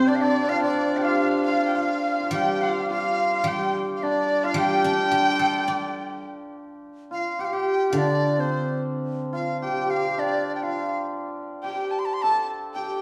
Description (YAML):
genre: chinese traditional, Chinese chamber ensemble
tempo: 107 BPM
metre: 2/4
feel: rubato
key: G shang mode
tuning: A4 = 436 Hz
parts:
  - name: bright large dizi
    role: melody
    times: 0.0-13.0 s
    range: C5 to C6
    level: -29 LUFS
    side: equal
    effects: none
  - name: dark erhu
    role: second line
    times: 0.0-6.2, 11.6-13.0 s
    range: D5 to A5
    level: -31 LUFS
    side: equal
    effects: none
  - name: hammered dulcimer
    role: second line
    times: 0.0-13.0 s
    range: C4 to A4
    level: -28 LUFS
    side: equal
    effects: none
  - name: guzheng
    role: accompaniment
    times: 0.0-9.6 s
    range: C3 to D5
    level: -32 LUFS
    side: equal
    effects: none
room: wet scoring stage reverb, RT60 1.5 s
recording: small room ambience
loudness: -24 LUFS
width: mono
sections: 0.0-6.8 A section; 6.8-13.0 B section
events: none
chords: none